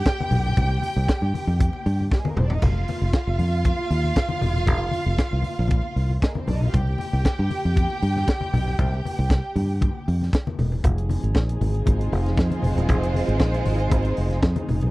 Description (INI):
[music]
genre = disco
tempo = 117 BPM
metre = 4/4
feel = straight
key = F minor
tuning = A4 = 440 Hz
[part]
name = warm studio violin section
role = second line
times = 0.0-14.9 s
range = G3 to G5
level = -29 LUFS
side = right 2 dB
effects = none
[part]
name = tight funk drum kit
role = drums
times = 0.1-14.9 s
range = crash cymbal, hi-hat, kick drum, snare drum, toms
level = -21 LUFS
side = equal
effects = none
[part]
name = congas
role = percussion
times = 0.1-14.9 s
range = none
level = -29 LUFS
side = left 2 dB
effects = none
[part]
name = fingered electric bass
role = bass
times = 0.3-14.9 s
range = E1 to G2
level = -22 LUFS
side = equal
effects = none
[part]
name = dark studio string section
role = sustained chords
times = 10.8-14.9 s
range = F3 to Ab4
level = -29 LUFS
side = right 1 dB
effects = none
[sound]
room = little or no reverb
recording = dry, close 1970s-style studio recording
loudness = -20 LUFS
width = side -20 dB against mid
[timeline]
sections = 0.0-10.8 A section; 10.8-14.9 B section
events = drum fill 2.1-2.6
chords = 0.0 F5; 6.7 C5; 10.8 Fm7